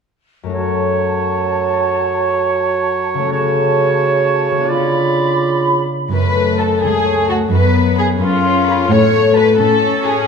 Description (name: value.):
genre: cinematic, playful, whimsical film cue.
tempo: 86 BPM (dotted quarters).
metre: 6/8.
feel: straight.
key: F# minor.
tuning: A4 = 440 Hz.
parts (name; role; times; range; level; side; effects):
concert harp; arpeggios; 0.4-10.3 s; F#2 to C#5; -18 LUFS; left 6 dB; none.
clear oboe; second line; 0.5-5.9 s; C#5 to D5; -21 LUFS; right 3 dB; none.
flute section; second line; 0.5-5.9 s; A5 to B5; -22 LUFS; right 2 dB; none.
mellow clarinet; second line; 0.5-5.9 s; E#4 to F#4; -22 LUFS; right 1 dB; none.
warm bassoon; accompaniment; 0.5-5.8 s; C#3 to F#3; -19 LUFS; right 8 dB; none.
warm studio violin section; second line; 6.1-10.3 s; E#4 to C#5; -16 LUFS; left 3 dB; none.
warm studio viola section; accompaniment; 6.1-10.3 s; A3 to C#4; -19 LUFS; right 1 dB; none.
warm studio cello section; bass; 6.1-10.1 s; C#2 to A2; -19 LUFS; right 2 dB; none.
warm studio violin section; melody; 6.6-10.2 s; A5 to B5; -28 LUFS; left 4 dB; none.
room: wet scoring stage reverb, RT60 1.5 s.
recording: minimal, uncompressed stereo recording.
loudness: -13 LUFS.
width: side -6 dB against mid.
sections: 0.5-6.1 A section; 6.1-10.3 B section.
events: none.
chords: 0.5 F#m; 3.3 F#m/C#; 4.7 C#7b9; 6.1 F#m; 7.5 C#7/F#; 8.9 F#m/A.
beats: | 0.54 1.24 | 1.94 2.63 | 3.32 4.00 | 4.69 5.40 | 6.11 6.82 | 7.52 8.21 | 8.90 9.59.